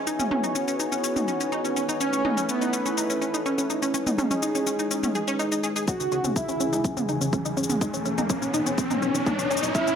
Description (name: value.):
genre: melodic techno.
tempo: 124 BPM.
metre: 4/4.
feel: straight.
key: C# minor.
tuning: A4 = 440 Hz.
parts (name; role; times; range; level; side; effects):
warm analog pad; sustained chords; 0.0-10.0 s; C#3 to C#5; -32 LUFS; left 1 dB; chorus, sidechain pumping.
wide unison pluck; arpeggios; 0.0-10.0 s; C#4 to G#4; -28 LUFS; equal; sidechain pumping, digital delay.
deep dark ambient pad; texture; 0.0-10.0 s; E3 to A5; -31 LUFS; equal; chorus, built-in reverb, sidechain pumping.
electronic shaker and toms; drums; 0.1-10.0 s; none; -30 LUFS; equal; sidechain pumping on perc, sidechain pumping on toms.
soft supersaw; melody; 2.0-2.9, 5.9-6.8, 9.7-10.0 s; B3 to F#4; -31 LUFS; right 2 dB; sidechain pumping, low-pass filter, dub echo.
dark detuned synth bell; second line; 5.9-6.8, 9.7-10.0 s; E5 to F#5; -32 LUFS; right 3 dB; chorus, tremolo, sidechain pumping, low-pass filter.
electronic kick drum; drums; 5.9-9.8 s; none; -28 LUFS; equal; high-pass filter on kick.
riser; sound effects; 7.1-10.0 s; none; -30 LUFS; equal; none.
fat analog bass; bass; 6.0-9.9 s; F#1 to C#2; -36 LUFS; equal; sidechain pumping, high-pass filter.
room: moderate digital room reverb, RT60 1.1 s, digital ambience.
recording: none.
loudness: -23 LUFS.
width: side -8 dB against mid.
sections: 0.0-5.9 A section; 5.9-10.0 B section.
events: build-up 5.9-10.0; filter sweep on supersaw synth 5.9-10.0; filter sweep on synth bell 5.9-10.0; riser 7.1-10.0.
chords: 0.1 Badd9; 2.0 A; 3.9 G#m; 7.8 Badd9.